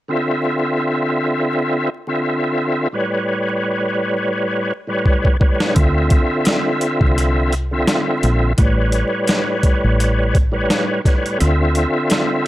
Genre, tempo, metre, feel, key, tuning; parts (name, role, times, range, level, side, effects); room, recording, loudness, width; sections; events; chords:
hip hop, boom-bap hip-hop; 85 BPM; 4/4; swing 55% on 16ths; D dorian; A4 = 440 Hz
bright tonewheel organ; accompaniment; 0.1-12.5 s; A2 to E5; -18 LUFS; equal; chorus vibrato, fast rotary speaker, cassette tape, high-pass filter, low-pass filter
boom bap sampler-style drum kit; drums; 5.1-12.3 s; hi-hat, kick drum, snare drum; -16 LUFS; equal
deep dub fingered electric bass; bass; 5.8-11.8 s; A1 to D2; -17 LUFS; equal
digital ambience; dry, gritty hardware recording, vinyl crackle; -15 LUFS; side -15 dB against mid
0.1-11.4 A section; 11.4-12.5 B section
drum fill 5.1-5.8; kick muted 11.4-12.5
0.1 Dm9; 2.9 A9; 5.8 Dm9; 8.6 A9; 11.4 Dm9